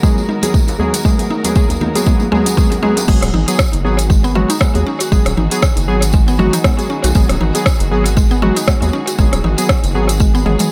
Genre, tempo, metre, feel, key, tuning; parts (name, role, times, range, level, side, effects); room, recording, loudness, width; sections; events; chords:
afro house; 118 BPM; 4/4; swing 56% on 16ths; G# minor; A4 = 440 Hz
muted chamber string section; sustained chords; 0.0-10.7 s; D#3 to A#4; -28 LUFS; equal; sidechain pumping
mallet-like synth pluck; arpeggios; 0.0-10.7 s; G#3 to F#4; -23 LUFS; equal; chorus, sidechain pumping, analog delay
warm analog keys; stabs; 0.0-10.7 s; F#3 to G#4; -22 LUFS; equal; chorus, sidechain pumping, analog delay
round analog bass; bass; 0.0-10.6 s; D#1 to D#2; -20 LUFS; equal; sidechain pumping, high-pass filter
afro-pop drum kit; drums; 0.0-10.7 s; crash cymbal, hi-hat, rim click, toms; -23 LUFS; equal; overdrive, analog delay
electronic kick drum; drums; 0.0-10.3 s; -16 LUFS; equal
tambourine; percussion; 0.0-10.7 s; -29 LUFS; equal; analog delay
congas; percussion; 0.2-2.9 s; -28 LUFS; equal
djembe; percussion; 0.7-3.1 s; -28 LUFS; equal; analog delay
light reverb, small room reverb; echo-heavy mix; -14 LUFS; mono
0.0-3.1 A section; 3.1-10.7 B section
build-up 0.0-3.1; drum fill 0.0-3.1; drop 3.1-10.7
0.0 G#m7